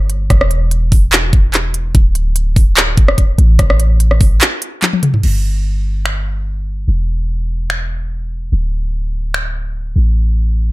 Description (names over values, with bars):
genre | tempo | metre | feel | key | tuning
future bass | 146 BPM | 4/4 | swing 53% on 16ths, half-time | unclear | A4 = 440 Hz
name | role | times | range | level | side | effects
warm 808-style bass | bass | 0.0-10.7 s | D1 to A1 | -15 LUFS | equal | tube saturation, sidechain pumping
trap drum kit | drums | 0.1-9.4 s | crash cymbal, finger snaps, handclaps, hi-hat, rim click, toms | -15 LUFS | equal | none
electronic kick drum | drums | 0.3-4.3 s | none | -10 LUFS | equal | none
room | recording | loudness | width
digital ambience | none | -12 LUFS | side -19 dB against mid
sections
0.0-5.2 A section; 5.2-10.7 B section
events
drop 0.0-5.2; break 4.4-5.2; drum fill 4.8-5.2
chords
none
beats
| 0.30 0.71 1.12 1.54 | 1.95 2.36 2.77 3.18 | 3.59 4.00 4.41 4.82 | 5.23 5.64 6.06 6.47 | 6.88 7.29 7.70 8.11 | 8.52 8.93 9.34 9.76 | 10.17 10.58